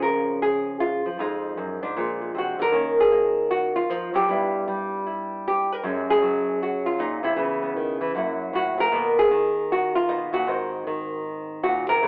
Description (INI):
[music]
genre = solo jazz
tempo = 155 BPM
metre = 4/4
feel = swing 64% on 8ths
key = Db major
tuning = A4 = 440 Hz
[part]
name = nylon-string guitar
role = solo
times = 0.0-12.1 s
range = F2 to Bb4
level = -24 LUFS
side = equal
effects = cassette tape
[sound]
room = light reverb, small room reverb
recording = home recording on cassette, telephone sound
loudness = -24 LUFS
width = mono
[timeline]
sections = 0.0-2.7 A section; 2.7-12.1 B section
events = none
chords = 0.0 Dbmaj7; 1.2 Fm7; 2.0 Bb7; 2.7 Ebm9; 4.3 G6; 5.8 Gbadd9; 7.4 Dbm7; 8.1 Gb7#9; 8.9 Cbmaj7; 10.5 Ab9